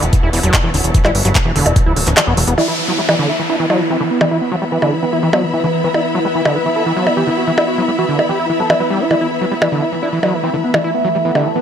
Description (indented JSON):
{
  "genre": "psychedelic trance",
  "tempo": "147 BPM",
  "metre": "4/4",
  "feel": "straight",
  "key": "unclear",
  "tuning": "A4 = 439 Hz",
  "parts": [
    { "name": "overtone-sweeping drone", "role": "sustained chords", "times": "0.1-11.6 s", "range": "E3 to B3", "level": "-22 LUFS", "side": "right 2 dB", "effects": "chorus, built-in reverb, phaser, sidechain pumping" },
    { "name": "overdriven acid bass", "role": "riff", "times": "0.0-11.6 s", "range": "D3 to E4", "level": "-20 LUFS", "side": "equal", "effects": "auto-pan, sidechain pumping, dub echo" },
    { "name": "plucky analog bass", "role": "bass", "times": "0.0-2.5 s", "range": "D1 to G1", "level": "-16 LUFS", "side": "equal", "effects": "none" },
    { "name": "techno drum kit", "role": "drums", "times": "0.0-11.4 s", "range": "handclaps, hi-hat, percussion blips", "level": "-16 LUFS", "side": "equal", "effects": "none" },
    { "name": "warm symphonic string section", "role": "texture", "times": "0.0-11.6 s", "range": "B3 to B5", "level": "-22 LUFS", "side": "left 1 dB", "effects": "sidechain pumping" },
    { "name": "electronic kick drum", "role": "drums", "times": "0.1-1.8 s", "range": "none", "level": "-13 LUFS", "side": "equal", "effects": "none" },
    { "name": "resonant blip pluck", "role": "second line", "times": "0.5-2.6, 10.3-11.6 s", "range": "G3 to G4", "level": "-30 LUFS", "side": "equal", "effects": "none" },
    { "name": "wide unison lead", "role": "melody", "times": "2.6-11.6 s", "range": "E3 to B4", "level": "-20 LUFS", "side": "equal", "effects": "phaser, sidechain pumping, dub echo" },
    { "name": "downlifter", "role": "sound effects", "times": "2.6-5.8 s", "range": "none", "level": "-23 LUFS", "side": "equal", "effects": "none" }
  ],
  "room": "light reverb",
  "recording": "none",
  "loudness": "-13 LUFS",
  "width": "side -8 dB against mid",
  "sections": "0.0-2.6 A section; 2.6-11.6 B section",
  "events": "filter sweep on acid bass 0.0-2.6; kick drops out 2.2-2.6",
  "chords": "0.0 E5",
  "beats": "0.13 0.54 | 0.94 1.35 1.76 2.17 | 2.58 2.98 3.39 3.80 | 4.21 4.62 5.03 5.43 | 5.84 6.25 6.66 7.07 | 7.47 7.88 8.29 8.70 | 9.11 9.52 9.92 10.33 | 10.74 11.15 11.56"
}